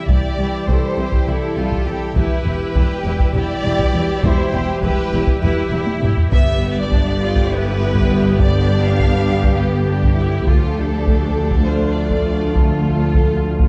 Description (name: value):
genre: cinematic, epic orchestral film score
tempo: 202 BPM (eighths)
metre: 7/8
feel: straight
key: unclear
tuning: A4 = 440 Hz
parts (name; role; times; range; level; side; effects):
- warm symphonic violin section; melody; 0.0-13.7 s; G4 to F5; -28 LUFS; equal; none
- rich symphonic violin section; second line; 0.0-13.7 s; B3 to A4; -30 LUFS; equal; none
- clear symphonic viola section; accompaniment; 0.0-13.7 s; A3 to G4; -29 LUFS; equal; none
- clear trombone section; sustained chords; 0.0-13.7 s; D3 to G3; -27 LUFS; equal; none
- mellow French horn section; sustained chords; 0.0-13.6 s; B2 to A4; -29 LUFS; equal; none
- rich symphonic cello section; bass; 0.1-13.7 s; C2 to G2; -26 LUFS; equal; none
- rich symphonic double bass section; bass; 0.1-13.7 s; E1 to D2; -25 LUFS; equal; none
- taiko ensemble; drums; 0.1-13.7 s; none; -21 LUFS; equal; none
room: moderate scoring stage reverb, RT60 1.6 s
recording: dark, warm production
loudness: -17 LUFS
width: mono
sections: 0.0-13.7 A section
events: drum fill 5.9-6.3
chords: 0.0 C; 2.2 Em; 6.3 G; 10.5 Dm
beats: | 0.08 0.38 0.67 0.97 1.27 1.56 1.86 | 2.16 2.45 2.75 3.05 3.34 3.64 3.94 | 4.23 4.53 4.83 5.12 5.42 5.72 6.01 | 6.31 6.61 6.91 7.20 7.50 7.80 8.09 | 8.39 8.69 8.98 9.28 9.58 9.88 10.17 | 10.47 10.77 11.07 11.36 11.66 11.96 12.26 | 12.55 12.85 13.15 13.44